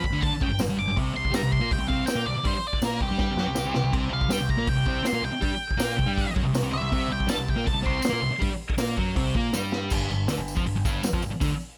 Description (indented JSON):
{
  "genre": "garage rock duo or trio",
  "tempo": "161 BPM",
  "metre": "4/4",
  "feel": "straight",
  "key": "unclear",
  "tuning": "A4 = 440 Hz",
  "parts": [
    { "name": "octave-fuzz lead guitar", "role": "melody", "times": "0.0-8.4 s", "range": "G4 to D6", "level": "-32 LUFS", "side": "equal", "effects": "distortion" },
    { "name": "thick fuzz guitar", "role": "riff", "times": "0.0-11.5 s", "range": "G2 to Bb4", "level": "-30 LUFS", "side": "equal", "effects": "distortion" },
    { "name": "growling picked electric bass", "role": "bass", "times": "0.0-11.5 s", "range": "G1 to Bb2", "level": "-33 LUFS", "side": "equal", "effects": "overdrive" },
    { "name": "vintage drum kit", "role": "drums", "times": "0.0-11.5 s", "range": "crash cymbal, hi-hat, kick drum, snare drum", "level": "-31 LUFS", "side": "equal", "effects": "none" },
    { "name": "tambourine", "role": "percussion", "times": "0.6-11.6 s", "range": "none", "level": "-40 LUFS", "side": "equal", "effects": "none" }
  ],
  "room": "small room ambience",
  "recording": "none",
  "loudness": "-26 LUFS",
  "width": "mono",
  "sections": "0.0-9.9 A section; 9.9-11.8 B section",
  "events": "lead electric guitar solo 0.0-9.9; drum fill 3.2-3.9, 9.5-9.9",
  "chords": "0.0 G5; 1.0 C5; 9.9 G5"
}